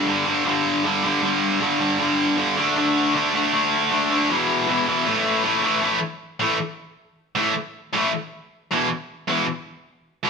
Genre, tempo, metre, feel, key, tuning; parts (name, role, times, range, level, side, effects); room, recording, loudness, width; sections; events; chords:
punk; 156 BPM; 4/4; straight; A4 = 440 Hz
tight distorted guitar; solo; 0.0-10.3 s; E2 to D4; -19 LUFS; equal; distortion
moderate stone room reverb, RT60 1.2 s; band playing live in one room; -19 LUFS; side -5 dB against mid
0.0-5.8 A section; 5.8-10.3 B section
0.0 G5; 2.6 D5; 4.3 E5; 5.1 A5; 8.7 E5